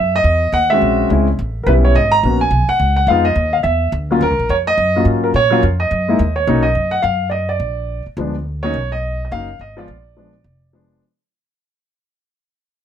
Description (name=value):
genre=jazz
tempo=212 BPM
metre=4/4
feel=swing 61% on 8ths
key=unclear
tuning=A4 = 442 Hz
part: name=warm concert grand piano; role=melody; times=0.0-11.0 s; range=F3 to Bb5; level=-15 LUFS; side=equal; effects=none
part: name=upright bass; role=bass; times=0.0-11.0 s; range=F1 to Bb2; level=-18 LUFS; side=equal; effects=none
room=light reverb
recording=none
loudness=-13 LUFS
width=side -9 dB against mid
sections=0.0-6.5 A section; 6.5-11.0 B section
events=fade-out 6.5-11.0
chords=0.0 Emaj7(no3); 0.8 Bbm7b5; 1.4 A9; 2.0 Abm11; 3.1 Fm7b5; 3.7 N.C.; 4.2 Ebm9; 5.9 Gb5; 6.5 Badd9; 7.6 Bb; 8.7 Badd9; 9.9 Bb7b9